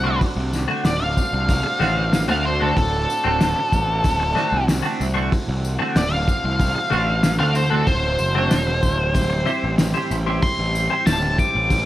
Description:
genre	psychedelic rock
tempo	94 BPM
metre	4/4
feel	straight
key	D mixolydian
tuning	A4 = 441 Hz
part	octave-fuzz lead guitar	melody	0.0-11.9 s	A4 to D6	-22 LUFS	equal	distortion, slapback echo
part	combo organ	sustained chords	0.0-11.9 s	E3 to G4	-30 LUFS	right 4 dB	none
part	twelve-string electric guitar	riff	0.0-11.3 s	D3 to C5	-24 LUFS	equal	flanger, double-tracked left and right
part	fuzz picked electric bass	bass	0.0-11.8 s	D1 to D2	-23 LUFS	equal	overdrive
part	cloth-damped thuddy drum kit	drums	0.2-11.9 s	hi-hat, kick drum, snare drum	-23 LUFS	equal	none
part	tambourine	percussion	0.2-11.9 s	none	-38 LUFS	left 6 dB	none
room	small room ambience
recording	none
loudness	-17 LUFS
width	side -14 dB against mid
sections	0.0-11.9 A section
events	lead electric guitar solo 0.0-11.9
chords	0.0 D7; 9.2 C/D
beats	0.21 0.85 | 1.49 2.13 2.76 3.40 | 4.04 4.68 5.32 5.96 | 6.59 7.23 7.87 8.51 | 9.15 9.79 10.43 11.07 | 11.71

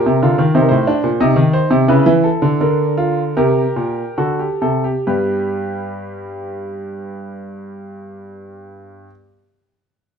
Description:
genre	classical, baroque-style 3-part fugue for grand piano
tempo	64-94 BPM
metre	3/4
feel	straight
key	unclear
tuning	A4 = 441 Hz
part	warm grand piano	solo	0.0-9.1 s	G2 to Eb5	-15 LUFS	equal	none
room	moderate stone room reverb, RT60 1.1 s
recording	none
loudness	-13 LUFS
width	side -6 dB against mid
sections	0.0-5.1 A section; 5.1-10.2 B section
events	slowing down 0.0-5.1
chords	0.0 Gm; 0.5 Adim; 1.9 A/C#; 2.6 Gm/D; 4.2 D7; 5.1 G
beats	| 0.54 1.19 1.87 | 2.59 3.35 4.17 | 5.07 6.01 6.95 | 7.89 8.82

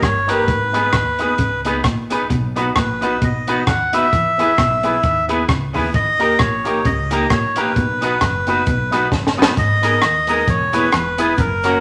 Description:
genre	ska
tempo	132 BPM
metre	4/4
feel	swing 56% on 8ths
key	B major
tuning	A4 = 440 Hz
part	melodica	melody	0.0-11.8 s	A#4 to F#5	-21 LUFS	equal	none
part	electric guitar at the edge of break-up	riff	0.0-11.5 s	E2 to E3	-29 LUFS	equal	spring reverb
part	upright bass	bass	0.0-11.8 s	E1 to E2	-29 LUFS	equal	none
part	compact cocktail drum kit	drums	0.0-11.7 s	hi-hat, kick drum, rim click, snare drum	-22 LUFS	equal	none
part	electric guitar with an envelope filter	accompaniment	0.3-11.8 s	G#3 to B4	-25 LUFS	equal	none
part	bright upright piano	stabs	0.3-11.7 s	A#3 to B4	-26 LUFS	equal	none
part	cabasa	percussion	9.6-11.7 s	none	-48 LUFS	equal	none
room	wet large studio reverb, RT60 0.9 s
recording	none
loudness	-17 LUFS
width	mono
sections	0.0-9.6 A section; 9.6-11.8 B section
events	drum fill 9.1-9.6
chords	0.5 G#m; 2.3 B; 4.1 E; 5.9 D#; 7.8 B; 9.6 G#madd9; 10.5 E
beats	0.03 | 0.48 0.94 1.39 1.84 | 2.30 2.75 3.21 3.67 | 4.12 4.58 5.03 5.49 | 5.94 6.39 6.85 7.30 | 7.76 8.21 8.66 9.12 | 9.57 10.02 10.48 10.93 | 11.38

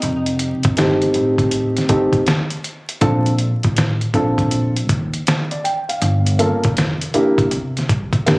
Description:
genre	hip hop, jazz-hop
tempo	80 BPM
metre	4/4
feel	swing 65% on 16ths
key	unclear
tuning	A4 = 440 Hz
part	archtop guitar, miked and amplified	melody	0.0-1.9 s	Eb4	-32 LUFS	equal	tape echo
part	vibraphone with soft mallets	second line	0.0-1.9 s	C4	-24 LUFS	equal	none
part	dark grand piano	accompaniment	0.0-8.4 s	A3 to G5	-18 LUFS	equal	none
part	upright bass	bass	0.0-8.4 s	F1 to C3	-20 LUFS	equal	none
part	trip hop sampler-style drum kit	drums	0.0-8.4 s	hi-hat, kick drum, snare drum	-19 LUFS	equal	none
room	light reverb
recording	recorded on a phone in the room, club reverb, vinyl crackle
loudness	-15 LUFS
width	side -26 dB against mid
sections	0.0-8.4 A section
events	none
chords	0.0 F7; 3.0 Bbmaj9; 6.0 Gm7b5; 7.5 C7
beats	| 0.02 0.77 1.52 2.27 | 3.02 3.77 4.52 5.27 | 6.02 6.77 7.52 8.27

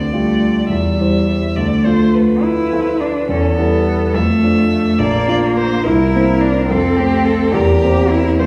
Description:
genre	quick classical-period movement for piano trio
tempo	70 BPM (dotted quarters)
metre	6/8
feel	rubato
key	unclear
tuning	A4 = 440 Hz
part	rich violin	melody	0.0-8.5 s	G4 to E5	-24 LUFS	equal	none
part	warm grand piano	accompaniment	0.0-8.5 s	Bb1 to C5	-18 LUFS	equal	none
part	rich cello	second line	0.1-8.5 s	G3 to G4	-19 LUFS	equal	none
room	wet recital hall reverb, RT60 1.4 s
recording	heard from further back in the room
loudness	-15 LUFS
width	mono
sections	0.0-8.5 A section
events	none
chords	0.0 G5/D; 0.7 C/E; 1.6 Dm; 3.3 A5/E; 4.2 Dm/F; 5.0 Bb; 5.8 C7; 6.7 F; 7.5 C7/E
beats	0.70 | 1.56 2.43 | 3.29 4.15 | 5.00 5.84 | 6.69 7.53 | 8.39

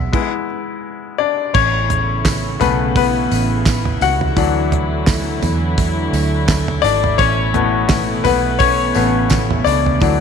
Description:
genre	piano-driven pop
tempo	85 BPM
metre	4/4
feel	swing 56% on 16ths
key	A major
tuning	A4 = 439 Hz
part	bright grand piano	accompaniment	0.0-10.2 s	B2 to F#5	-17 LUFS	left 9 dB	none
part	warm chamber string section	sustained chords	0.0-10.2 s	B2 to E4	-22 LUFS	right 1 dB	none
part	vintage muted fingered electric bass	bass	0.0-10.2 s	G#1 to E2	-20 LUFS	right 2 dB	none
part	damped 70s drum kit	drums	0.1-10.2 s	crash cymbal, handclaps, hi-hat, kick drum, snare drum, toms	-20 LUFS	right 3 dB	none
part	tambourine	percussion	1.5-10.2 s	none	-34 LUFS	right 17 dB	none
room	moderate echo chamber reverb, RT60 2.1 s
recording	1960s-style stereo with parts hard left and right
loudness	-14 LUFS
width	side -6 dB against mid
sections	0.0-1.5 A section; 1.5-10.2 B section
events	grand piano solo 0.0-1.5, 1.5-10.2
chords	0.0 E; 1.5 Aadd9; 4.4 Dadd9; 7.2 Aadd9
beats	0.14 0.84 | 1.55 2.25 2.96 3.66 | 4.37 5.08 5.78 6.49 | 7.19 7.90 8.61 9.31 | 10.02

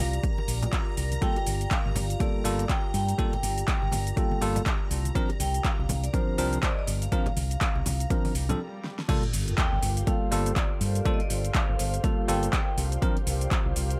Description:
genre	deep house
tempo	122 BPM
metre	4/4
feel	swing 59% on 16ths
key	G minor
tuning	A4 = 440 Hz
part	vibraphone with medium hard mallets	melody	0.0-12.7 s	C5 to G5	-38 LUFS	equal	digital delay
part	warm analog pad	sustained chords	0.0-14.0 s	F4 to D5	-43 LUFS	equal	chorus, sidechain pumping
part	hollow-body short-scale fingered electric bass	bass	0.0-13.9 s	G1 to G2	-31 LUFS	equal	tube saturation, sidechain pumping
part	string machine, violins	texture	0.0-8.6 s	Bb5	-46 LUFS	equal	ensemble chorus, sidechain pumping
part	deep house drum kit	drums	0.1-14.0 s	cabasa, crash cymbal, handclaps, hi-hat, snare drum	-35 LUFS	equal	overdrive, studio reverb
part	electronic kick drum	drums	0.2-13.6 s	none	-30 LUFS	equal	overdrive, studio reverb
part	congas and bongos	percussion	0.4-8.6 s	none	-38 LUFS	equal	none
part	bell-like tine electric piano	stabs	1.2-13.2 s	F3 to Bb4	-34 LUFS	equal	sidechain pumping, digital delay
part	swell and sub drop	sound effects	8.4-11.1 s	none	-40 LUFS	equal	none
part	ethereal airy pad	texture	9.3-14.0 s	G4 to F5	-42 LUFS	equal	ensemble chorus, built-in reverb, sidechain pumping
room	little or no reverb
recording	none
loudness	-27 LUFS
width	mono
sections	0.0-9.1 A section; 9.1-14.0 B section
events	swell 8.4-9.1; stop 8.6-9.1; drum fill 8.8; drop 9.1-14.0; impact 9.1-11.1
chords	0.0 C9sus4; 1.2 Gm9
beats	0.23 0.73 | 1.22 1.71 2.20 2.69 | 3.19 3.68 4.17 4.66 | 5.15 5.64 6.14 6.63 | 7.12 7.61 8.10 8.60 | 9.09 9.58 10.07 10.56 | 11.05 11.55 12.04 12.53 | 13.02 13.51

